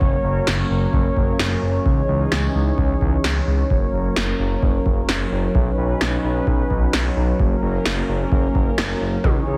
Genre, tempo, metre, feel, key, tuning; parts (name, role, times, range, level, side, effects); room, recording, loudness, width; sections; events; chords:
synth-pop; 130 BPM; 4/4; straight; F# mixolydian; A4 = 435 Hz
brassy analog pad; sustained chords; 0.0-9.6 s; E3 to C#5; -25 LUFS; equal; chorus
smooth synth bass; bass; 0.0-9.6 s; F#1 to C#2; -24 LUFS; equal
electro analog drum machine; drums; 0.0-9.3 s; kick drum, snare drum, toms; -24 LUFS; equal
light reverb; heavily compressed radio sound, multiband compression; -20 LUFS; mono
0.0-9.6 A section
drum fill 9.2-9.6
0.0 F#; 1.9 C#madd9; 3.7 F#; 5.5 Badd9; 7.4 F#